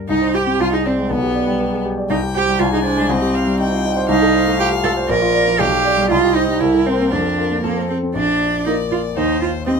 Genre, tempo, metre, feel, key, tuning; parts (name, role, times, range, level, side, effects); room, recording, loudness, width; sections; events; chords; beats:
quick classical-period movement for piano trio; 119 BPM; 2/4; straight; C minor, Bb major from 4.1 s; A4 = 440 Hz
warm concert grand piano; accompaniment; 0.0-9.8 s; Bb1 to D5; -19 LUFS; left 2 dB
clear violin; melody; 0.1-9.8 s; B3 to Ab5; -25 LUFS; left 7 dB
rich cello; second line; 0.1-9.7 s; Bb3 to Bb4; -17 LUFS; right 4 dB
light reverb; minimal, uncompressed stereo recording; -15 LUFS; side -6 dB against mid
0.1-8.2 A section; 8.2-9.8 B section
0.1 Cm; 0.6 Ab6/C; 1.1 G/B; 2.1 C5; 2.6 Fm6/C; 3.1 Cm; 4.1 F7/C; 5.1 Bb; 5.6 G7/B; 6.1 Cm; 6.6 C7; 7.1 Bb/F; 7.6 F; 8.2 Bb; 9.2 Cm/Eb
| 0.09 0.60 | 1.10 1.60 | 2.10 2.60 | 3.10 3.59 | 4.09 4.59 | 5.09 5.59 | 6.10 6.61 | 7.12 7.64 | 8.15 8.66 | 9.16 9.67